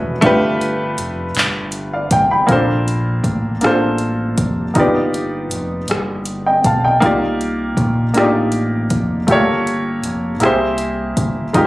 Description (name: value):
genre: slow six-eight R&B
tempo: 53 BPM (dotted quarters)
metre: 6/8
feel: straight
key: C dorian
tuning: A4 = 440 Hz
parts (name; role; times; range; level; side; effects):
- warm baby grand piano; accompaniment; 0.0-11.7 s; Ab3 to B5; -16 LUFS; equal; none
- deep dub fingered electric bass; bass; 0.0-11.7 s; E1 to C2; -23 LUFS; equal; none
- smooth R&B drum kit; drums; 0.2-11.7 s; handclaps, hi-hat, kick drum, rim click; -20 LUFS; equal; none
room: little or no reverb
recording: recorded on a phone in the room, club reverb, compression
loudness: -14 LUFS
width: side -18 dB against mid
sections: 0.0-2.5 A section; 2.5-11.7 B section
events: none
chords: 0.2 G7; 2.5 Bbmaj9; 4.8 G7b13; 7.0 Cm11; 9.3 Gm7b5; 10.4 C7b13